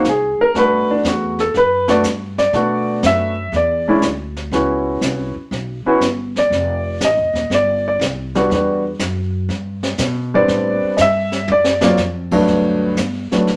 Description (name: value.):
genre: jazz piano trio.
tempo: 121 BPM.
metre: 4/4.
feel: swing 68% on 8ths.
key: unclear.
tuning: A4 = 440 Hz.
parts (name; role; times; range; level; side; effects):
warm concert grand piano; melody; 0.0-13.5 s; G2 to E5; -17 LUFS; equal; none.
upright bass; bass; 0.0-13.6 s; Eb1 to B2; -27 LUFS; equal; none.
jazz brush drum kit; drums; 0.0-13.6 s; brushed snare drum, crash cymbal, hi-hat, kick drum, snare drum, toms; -26 LUFS; equal; none.
room: moderate studio reverb, RT60 0.6 s.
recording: none.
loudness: -17 LUFS.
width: mono.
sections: 0.0-12.5 A section; 12.5-13.6 A section.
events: grand piano solo 0.0-13.6; drum fill 11.5-12.0.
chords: 0.0 G#add9; 0.5 Gmaj9; 2.5 Bm7; 3.5 N.C.; 4.5 Gmaj7#11; 6.5 F7sus2; 8.5 Em9; 10.5 Am7; 11.5 D(#9); 12.5 Gmaj7.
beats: 0.05 | 0.55 1.04 1.54 2.04 | 2.54 3.03 3.53 4.03 | 4.53 5.02 5.52 6.02 | 6.51 7.01 7.51 8.01 | 8.51 9.00 9.50 10.00 | 10.49 10.99 11.49 11.99 | 12.48 12.98 13.48.